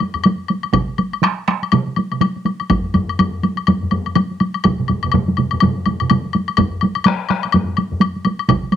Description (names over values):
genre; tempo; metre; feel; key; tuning
japanese traditional, taiko drum ensemble; 124 BPM; 4/4; swing 60% on 16ths; none; none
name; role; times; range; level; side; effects
taiko ensemble; percussion; 0.0-8.8 s; none; -17 LUFS; equal; none
woodblock; percussion; 0.0-8.8 s; none; -20 LUFS; left 10 dB; none
taiko ensemble; percussion; 0.1-8.0 s; none; -24 LUFS; left 2 dB; none
taiko ensemble; percussion; 0.7-8.6 s; none; -21 LUFS; right 6 dB; none
taiko ensemble; percussion; 0.7-8.6 s; none; -23 LUFS; right 4 dB; none
room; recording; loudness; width
moderate studio reverb, RT60 0.6 s; home recording on cassette; -15 LUFS; side -10 dB against mid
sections
0.0-8.8 A section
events
speeding up 0.0-8.8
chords
none